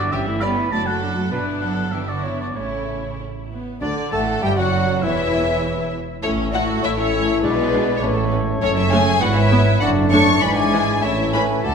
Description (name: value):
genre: quick classical-period movement for symphony orchestra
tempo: 99 BPM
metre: 2/4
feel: straight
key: D major, A major from 8.6 s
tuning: A4 = 440 Hz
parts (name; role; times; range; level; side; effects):
- rich studio violin section; melody; 0.0-11.7 s; D4 to C#6; -24 LUFS; left 3 dB; none
- rich studio violin section; second line; 0.0-11.7 s; B3 to D5; -28 LUFS; left 3 dB; none
- warm oboe; second line; 0.0-11.7 s; B4 to B5; -27 LUFS; right 1 dB; none
- rich studio viola section; accompaniment; 0.0-11.5 s; D3 to F#4; -27 LUFS; right 1 dB; none
- rich studio cello section; bass; 0.0-11.7 s; D2 to B3; -26 LUFS; right 2 dB; none
- rich studio double bass section; bass; 0.0-11.7 s; E1 to D2; -25 LUFS; right 4 dB; none
- clear clarinet; second line; 3.8-11.7 s; D4 to A4; -27 LUFS; left 3 dB; none
- mellow hollow concert flute; second line; 3.8-11.7 s; G#4 to A5; -28 LUFS; left 1 dB; none
- mellow bassoon; accompaniment; 3.8-11.7 s; D3 to B3; -27 LUFS; right 2 dB; none
- mellow French horn section; sustained chords; 3.8-11.7 s; D3 to E4; -26 LUFS; left 5 dB; none
room: wet scoring stage reverb, RT60 2.0 s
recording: minimal, uncompressed stereo recording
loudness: -17 LUFS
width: side -6 dB against mid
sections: 0.0-3.8 A section; 3.8-11.7 B section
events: none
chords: 0.1 A7/G; 0.7 D/F#; 1.3 Em7/G; 2.6 A; 3.8 D; 5.0 C#m/E; 6.2 A5; 7.4 E7/B; 8.0 A; 8.6 F#m; 9.2 E/G#; 9.8 D/F#; 10.4 E7/G#; 11.0 A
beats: | 0.13 0.72 | 1.32 1.94 | 2.56 3.19 | 3.82 4.43 | 5.03 5.63 | 6.23 6.83 | 7.43 8.03 | 8.62 9.21 | 9.81 10.42 | 11.02 11.64